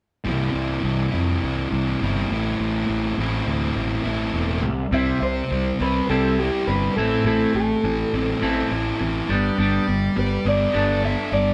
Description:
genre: rock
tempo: 103 BPM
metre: 4/4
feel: straight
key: unclear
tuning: A4 = 440 Hz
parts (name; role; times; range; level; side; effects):
- thick fuzz guitar; riff; 0.2-11.5 s; A2 to A4; -26 LUFS; equal; distortion
- fuzz fingered electric bass; bass; 0.3-11.5 s; E1 to F2; -27 LUFS; equal; overdrive
- electric guitar at the edge of break-up; melody; 4.9-11.5 s; G4 to E5; -27 LUFS; equal; none
- biting overdriven guitar; riff; 4.9-11.5 s; E3 to E4; -28 LUFS; equal; none
room: wet studio reverb, RT60 0.9 s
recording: band playing live in one room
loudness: -22 LUFS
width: mono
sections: 0.3-4.9 A section; 4.9-11.5 B section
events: none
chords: 0.3 C; 2.3 Am; 4.6 N.C.; 4.9 C; 7.0 Am; 9.3 Gadd9

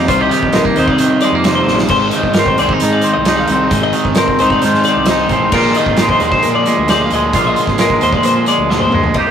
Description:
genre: math rock and midwest emo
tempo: 132 BPM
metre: 4/4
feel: straight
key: unclear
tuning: A4 = 440 Hz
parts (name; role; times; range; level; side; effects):
- twangy electric guitar; accompaniment; 0.0-9.3 s; Bb2 to G4; -15 LUFS; right 2 dB; none
- twelve-string electric guitar; arpeggios; 0.0-9.3 s; Bb4 to F5; -17 LUFS; left 4 dB; spring reverb
- overdriven semi-hollow guitar; riff; 0.0-9.2 s; Ab2 to Ab4; -17 LUFS; equal; none
- fuzz fingered electric bass; bass; 0.0-9.2 s; G1 to C3; -21 LUFS; equal; overdrive
- loose indie drum kit; drums; 0.1-9.3 s; crash cymbal, hi-hat, kick drum, ride cymbal, snare drum, toms; -18 LUFS; right 1 dB; none
room: moderate stone room reverb, RT60 1.4 s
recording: rough rehearsal-room recording, warm saturation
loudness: -10 LUFS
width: side -8 dB against mid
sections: 0.0-9.2 A section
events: drum fill 1.7, 8.7-9.2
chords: 0.0 Cm7; 1.9 Abmaj7; 5.5 Bb7sus4

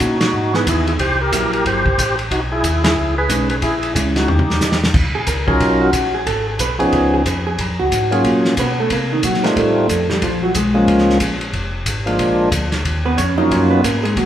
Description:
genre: soul jazz organ trio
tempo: 182 BPM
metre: 4/4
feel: swing 62% on 8ths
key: Eb minor from 4.9 s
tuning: A4 = 442 Hz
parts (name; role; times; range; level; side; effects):
- percussive tonewheel organ; melody; 0.0-13.8 s; F3 to C5; -18 LUFS; equal; slow rotary speaker, overdrive
- mellow tonewheel organ; bass; 0.0-14.3 s; F1 to C3; -22 LUFS; equal; overdrive, chorus vibrato, slow rotary speaker
- warm soul drum kit; drums; 0.0-14.3 s; crash cymbal, hi-hat, kick drum, ride cymbal, snare drum, toms; -21 LUFS; equal; none
- vintage hollow-body jazz guitar; accompaniment; 0.5-14.3 s; Eb3 to Eb5; -20 LUFS; right 1 dB; none
room: wet large studio reverb, RT60 1.4 s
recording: band playing live in one room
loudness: -14 LUFS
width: side -11 dB against mid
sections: 0.0-4.9 A section; 4.9-14.3 B section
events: band accent 0.2, 2.8; drum fill 4.3-4.9; hollow-body jazz guitar solo 4.9-14.3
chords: 0.0 C#m9 (rootless); 1.0 C7#11; 2.3 B69; 3.6 A#m7b5; 4.3 D#; 4.9 Ebm7; 6.3 Abm; 6.9 Db7; 7.6 Gbmaj7; 8.9 Cm7b5; 9.6 F7; 10.2 Bbm7; 11.5 Fmadd11; 12.2 Bb7; 12.9 Ebm7

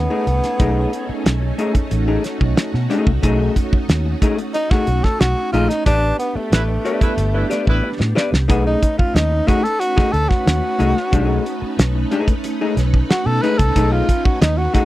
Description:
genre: funk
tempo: 91 BPM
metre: 4/4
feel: straight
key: B mixolydian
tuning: A4 = 440 Hz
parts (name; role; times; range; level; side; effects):
- breathy tenor saxophone; melody; 0.0-14.8 s; A3 to B4; -21 LUFS; equal; none
- string machine, violins; sustained chords; 0.0-14.8 s; A3 to B4; -26 LUFS; right 1 dB; ensemble chorus
- vintage muted fingered electric bass; bass; 0.0-14.7 s; G1 to B2; -19 LUFS; equal; none
- vintage hollow-body jazz guitar; accompaniment; 0.1-14.8 s; A3 to D5; -21 LUFS; left 4 dB; none
- cloth-damped thuddy drum kit; drums; 0.3-14.8 s; hi-hat, kick drum, snare drum; -17 LUFS; equal; none
- mellow horn section; second line; 6.5-7.9 s; G3 to B4; -24 LUFS; right 1 dB; none
room: little or no reverb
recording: dry, close 1970s-style studio recording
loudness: -15 LUFS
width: side -16 dB against mid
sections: 0.0-14.8 A section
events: tenor saxophone solo 0.0-14.8; band accent 5.9-8.5; drum fill 7.8-8.5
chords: 0.0 B13; 5.9 A9sus4; 8.5 B13

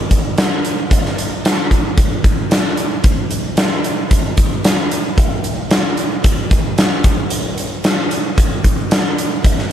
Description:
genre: rock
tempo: 112 BPM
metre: 4/4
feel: straight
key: none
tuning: none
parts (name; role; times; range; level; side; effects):
- huge arena drum kit; drums; 0.1-9.6 s; hi-hat, kick drum, snare drum; -13 LUFS; equal; none
room: little or no reverb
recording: lossy compression artefacts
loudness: -13 LUFS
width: side -10 dB against mid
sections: 0.0-9.7 A section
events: none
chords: none

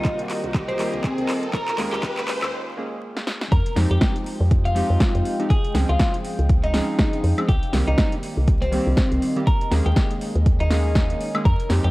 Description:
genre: deep house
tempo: 121 BPM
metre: 4/4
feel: swing 57% on 16ths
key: F minor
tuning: A4 = 439 Hz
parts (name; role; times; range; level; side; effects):
- twelve-string electric guitar; melody; 0.0-11.9 s; C4 to Bb4; -27 LUFS; equal; vintage 12-bit sampler grit, tape echo
- deep dark ambient pad; sustained chords; 0.0-11.9 s; Ab3 to Bb5; -37 LUFS; equal; none
- warm analog keys; stabs; 0.0-11.9 s; Eb3 to Ab4; -28 LUFS; right 1 dB; chorus, sidechain pumping, tape echo
- deep house drum kit; drums; 0.0-11.9 s; handclaps, hi-hat, snare drum, woodblock; -27 LUFS; equal; overdrive, studio reverb
- electronic kick drum; drums; 0.0-11.6 s; none; -20 LUFS; equal; overdrive, studio reverb
- riser; sound effects; 0.0-2.5 s; none; -31 LUFS; equal; none
- airy breathy pad; texture; 0.0-11.5 s; F4 to Ab5; -37 LUFS; equal; chorus, sidechain pumping
- woody FM bass; bass; 0.4-11.9 s; C2 to F2; -21 LUFS; equal; sidechain pumping
room: digital ambience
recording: dry, gritty hardware recording, vinyl crackle, high-pass filter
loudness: -19 LUFS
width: side -20 dB against mid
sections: 0.0-3.5 A section; 3.5-11.9 B section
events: build-up 0.0-3.5; drum fill 0.0-2.5, 3.1-3.5; riser 0.0-2.5; filter sweep on synth keys 0.0-3.5; filter sweep 0.0-3.5; break 2.5-3.5; drop 3.5-11.9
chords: 0.0 Cm7; 1.5 Eb7sus4; 3.5 Fm9; 5.5 Dbmaj7; 7.5 Cm7; 9.5 Eb7sus4

